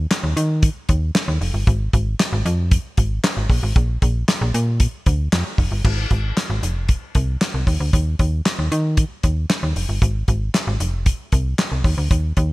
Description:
early-eighties boogie funk; 115 BPM; 4/4; straight; A4 = 440 Hz
slap-like FM bass; bass; 0.0-12.5 s; F1 to Eb3; -20 LUFS; equal
damped 70s drum kit; drums; 0.1-12.5 s; crash cymbal, handclaps, hi-hat, kick drum, snare drum; -19 LUFS; equal; gated reverb
little or no reverb; bright 1980s-style digital production; -17 LUFS; side -20 dB against mid
0.0-5.8 A section; 5.8-12.5 B section
0.11 0.63 1.15 | 1.67 2.19 2.71 3.24 | 3.76 4.28 4.80 5.32 | 5.85 6.37 6.89 7.41 | 7.93 8.45 8.98 9.50 | 10.02 10.54 11.06 11.59 | 12.11

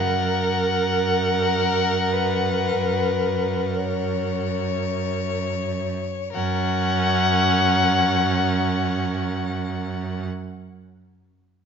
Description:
classical, slow romantic movement for string quartet; free time; F# major; A4 = 440 Hz
dark violin; melody; 0.0-10.2 s; A#4 to C#5; -29 LUFS; left 10 dB
clear violin; second line; 0.0-10.3 s; F#5; -24 LUFS; left 6 dB
clear viola; accompaniment; 0.0-10.2 s; C#4 to A#4; -26 LUFS; right 3 dB
rich cello; bass; 0.0-10.3 s; F#2; -25 LUFS; right 5 dB
wet recital hall reverb, RT60 1.6 s; nothing above 7.5 kHz; -20 LUFS; side -6 dB against mid
0.0-6.3 A section; 6.3-11.7 B section
slowing down 0.0-6.3
0.0 F#
free time

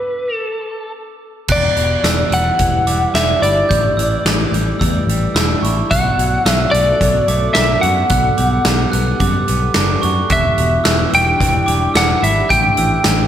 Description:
post-rock; 109 BPM; 4/4; straight; E minor; A4 = 440 Hz
electric slide guitar; melody; 0.0-13.3 s; B4 to G5; -16 LUFS; equal; slapback echo
airy breathy pad; sustained chords; 1.8-13.3 s; E3 to F#5; -26 LUFS; right 1 dB; chorus
glockenspiel with soft plastic mallets; arpeggios; 1.5-13.3 s; C#6 to G6; -24 LUFS; right 5 dB; slapback echo
semi-hollow electric guitar; arpeggios; 1.5-13.3 s; E2 to F#4; -24 LUFS; left 3 dB; warbly pitch drift, slapback echo
picked electric bass; bass; 1.5-13.2 s; E1 to F#2; -19 LUFS; equal
big rock drum kit; drums; 1.5-13.2 s; crash cymbal, hi-hat, kick drum, snare drum; -18 LUFS; equal
moderate lush hall reverb, RT60 2.1 s; big arena sound; -12 LUFS; side -10 dB against mid
0.0-1.5 A section; 1.5-13.3 B section
stop 0.0-1.5
0.0 N.C.; 1.5 Em7; 3.7 A7sus4; 5.9 Bm7; 8.1 Gmaj7/B; 10.3 Em7; 12.5 A7sus4
0.40 0.95 | 1.50 2.05 2.60 3.15 | 3.71 4.26 4.81 5.36 | 5.91 6.46 7.01 7.56 | 8.11 8.66 9.21 9.76 | 10.31 10.86 11.41 11.96 | 12.51 13.06

